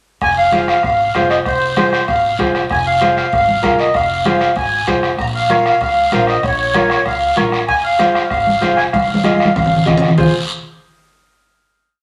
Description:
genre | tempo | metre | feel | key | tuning
latin, cumbia | 193 BPM | 4/4 | straight | F minor | A4 = 439 Hz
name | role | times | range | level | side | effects
accordion | melody | 0.2-9.9 s | C5 to Bb5 | -17 LUFS | equal | light tremolo tuning
upright bass | bass | 0.2-10.3 s | F1 to Db2 | -29 LUFS | equal | none
bombo | percussion | 0.2-10.3 s | none | -24 LUFS | equal | none
guiro | percussion | 0.2-10.3 s | none | -28 LUFS | equal | none
bright upright piano | accompaniment | 0.5-10.3 s | F4 to Eb5 | -21 LUFS | equal | none
congas | percussion | 0.5-10.3 s | none | -21 LUFS | equal | none
room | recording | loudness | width
wet studio reverb, RT60 0.8 s | none | -15 LUFS | mono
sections
0.2-10.2 A section; 10.2-11.4 final chord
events
drum fill 8.9-10.2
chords
0.2 Fm; 5.2 Bbm; 7.7 Fm

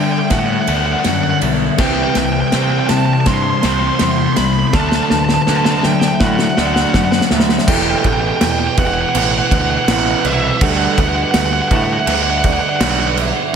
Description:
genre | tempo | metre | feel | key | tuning
post-rock | 82 BPM | 4/4 | straight | unclear | A4 = 442 Hz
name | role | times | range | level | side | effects
nasal lead guitar with a parked wah | melody | 0.0-13.1 s | E5 to C6 | -19 LUFS | right 1 dB | overdrive, tape echo
pedal steel guitar | sustained chords | 0.0-13.5 s | C3 to E5 | -28 LUFS | left 1 dB | none
twelve-string electric guitar | arpeggios | 0.0-7.7 s | C3 to E4 | -27 LUFS | left 2 dB | none
vibraphone with medium hard mallets | arpeggios | 0.0-13.5 s | B3 to E5 | -26 LUFS | right 2 dB | slapback echo, tape echo
thick fuzz guitar | riff | 0.0-7.6 s | C3 to C4 | -19 LUFS | left 10 dB | distortion
fuzz picked electric bass | bass | 0.0-13.3 s | E1 to D3 | -21 LUFS | equal | overdrive
loose indie drum kit | drums | 0.3-13.3 s | crash cymbal, kick drum, ride cymbal, snare drum | -18 LUFS | equal | none
raw garage guitar | riff | 1.8-13.6 s | E2 to D4 | -21 LUFS | right 10 dB | overdrive
room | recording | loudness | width
moderate concert hall reverb, RT60 2.6 s | big arena sound | -12 LUFS | side -7 dB against mid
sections
0.0-7.7 A section; 7.7-13.6 B section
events
build-up 0.0-7.7; drum fill 0.0-7.7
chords
0.0 Gmaj7; 1.8 C; 4.7 D; 7.7 Em; 10.6 Gmaj7/D

